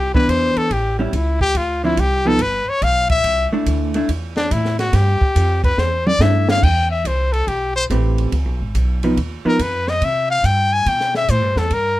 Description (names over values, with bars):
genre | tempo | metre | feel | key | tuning
jazz, small-group swing and bop | 142 BPM | 4/4 | swing 66% on 8ths | C major, A minor from 6.6 s | A4 = 440 Hz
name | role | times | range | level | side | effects
clear trumpet | melody | 0.0-12.0 s | B3 to G#5 | -18 LUFS | left 2 dB | none
upright bass | bass | 0.0-12.0 s | G1 to C3 | -19 LUFS | equal | none
compact cocktail drum kit | drums | 0.1-11.8 s | crash cymbal, hi-hat, kick drum, ride cymbal, snare drum, toms | -24 LUFS | right 1 dB | none
vintage hollow-body jazz guitar | accompaniment | 0.2-9.6 s | D3 to B4 | -19 LUFS | right 1 dB | none
room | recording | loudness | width
light reverb | close, detailed microphones | -15 LUFS | side -16 dB against mid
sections
0.0-6.6 A section; 6.6-12.0 A section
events
trumpet solo 0.0-12.0; drum fill 5.8-6.6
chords
0.0 Cmaj9; 0.7 A7; 1.6 Dm9; 2.4 G7; 3.2 C69 (rootless); 6.6 Am9; 8.3 C#9 (rootless); 10.0 C